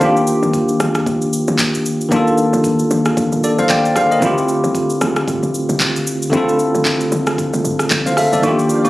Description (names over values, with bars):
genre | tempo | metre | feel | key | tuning
amapiano | 114 BPM | 4/4 | swing 58% on 16ths | D phrygian | A4 = 441 Hz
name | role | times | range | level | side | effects
bell-like tine electric piano | accompaniment | 0.0-8.9 s | D3 to G5 | -14 LUFS | equal | medium stereo tremolo
woody log drum bass | bass | 0.0-8.9 s | G1 to Eb2 | -23 LUFS | equal | none
afro-pop drum kit | drums | 0.0-8.9 s | handclaps, hi-hat, kick drum, rim click, shaker | -21 LUFS | equal | none
soft string machine | sustained chords | 8.6-8.9 s | F3 to G5 | -26 LUFS | right 1 dB | phaser, ensemble chorus
agogo bells | percussion | 8.4-8.9 s | none | -24 LUFS | right 2 dB | none
room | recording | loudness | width
light reverb | recorded on a phone in the room, studio reverb | -13 LUFS | side -17 dB against mid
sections
0.0-8.9 A section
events
none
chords
0.0 Ebmaj9; 4.2 Dm11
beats
| 0.01 0.54 1.06 1.59 | 2.12 2.64 3.17 3.70 | 4.22 4.75 5.28 5.80 | 6.33 6.85 7.38 7.91 | 8.43